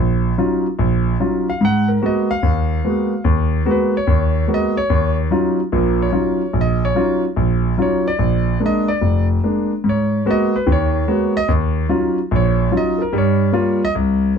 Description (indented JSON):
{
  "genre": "jazz",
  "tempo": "146 BPM",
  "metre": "4/4",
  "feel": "swing 64% on 8ths",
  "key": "Eb minor",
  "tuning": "A4 = 444 Hz",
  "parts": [
    { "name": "warm concert grand piano", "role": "solo", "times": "0.0-14.3 s", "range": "F1 to Gb5", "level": "-15 LUFS", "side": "equal", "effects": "none" }
  ],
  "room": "light reverb",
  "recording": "dark, warm production",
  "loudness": "-15 LUFS",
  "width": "side -6 dB against mid",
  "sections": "0.0-14.4 A section",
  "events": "grand piano solo 0.0-14.4",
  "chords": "0.0 Ebm9; 1.6 Abm9; 4.9 Ebm9; 8.2 Bb7; 9.8 Abm9; 11.5 Ebm9; 13.1 Gm7b5"
}